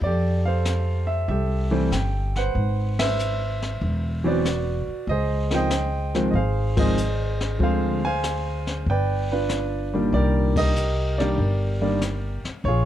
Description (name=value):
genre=jazz piano trio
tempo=95 BPM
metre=4/4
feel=swing 69% on 8ths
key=C minor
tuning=A4 = 440 Hz
part: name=clear baby grand piano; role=melody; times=0.0-12.9 s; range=Bb2 to Ab5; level=-24 LUFS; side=right 1 dB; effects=none
part: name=upright bass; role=bass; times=0.0-12.9 s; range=E1 to F2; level=-24 LUFS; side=equal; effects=none
part: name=jazz brush drum kit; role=drums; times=0.0-12.9 s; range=brushed snare drum, hi-hat, kick drum, ride cymbal, snare drum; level=-31 LUFS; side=left 2 dB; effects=none
room=light reverb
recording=dark, warm production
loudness=-21 LUFS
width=side -11 dB against mid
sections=0.0-12.9 A section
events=band accent 2.9-3.2, 6.7-7.0, 10.4-10.8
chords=0.0 Fmaj9; 2.6 Ab7alt; 5.1 Dbmaj9; 7.6 Dm7b5; 8.9 G7; 10.1 Cm9